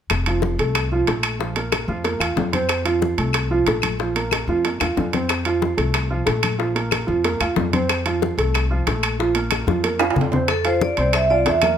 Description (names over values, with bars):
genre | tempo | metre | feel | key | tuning
Afro-Cuban jazz | 185 BPM | 4/4 | straight | F major | A4 = 436 Hz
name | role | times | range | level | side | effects
upright bass | bass | 0.1-11.8 s | F1 to F2 | -24 LUFS | left 1 dB | none
bongos | percussion | 0.1-11.6 s | none | -28 LUFS | left 9 dB | none
claves | percussion | 0.1-11.8 s | none | -29 LUFS | left 8 dB | none
congas | percussion | 0.1-11.8 s | none | -27 LUFS | left 5 dB | none
timbales | percussion | 0.1-11.8 s | none | -25 LUFS | right 5 dB | none
warm upright piano | accompaniment | 0.3-11.8 s | F3 to F5 | -23 LUFS | right 3 dB | none
vibraphone with medium hard mallets | melody | 10.5-11.8 s | A4 to E5 | -18 LUFS | right 1 dB | none
room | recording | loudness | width
light reverb | none | -18 LUFS | side -8 dB against mid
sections
0.1-10.5 A section; 10.5-11.8 B section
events
drum fill 4.6-5.3, 9.5-10.5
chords
0.1 F; 1.4 Bbsus2; 2.7 F; 4.0 Bbsus2; 5.3 F; 6.6 Bbsus2; 7.9 F; 9.2 Bbsus2; 10.5 F5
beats
| 0.11 0.43 0.75 1.08 | 1.40 1.73 2.05 2.38 | 2.70 3.02 3.35 3.67 | 4.00 4.32 4.65 4.97 | 5.30 5.62 5.95 6.27 | 6.59 6.92 7.24 7.57 | 7.89 8.22 8.54 8.87 | 9.19 9.52 9.84 10.16 | 10.49 10.81 11.14 11.46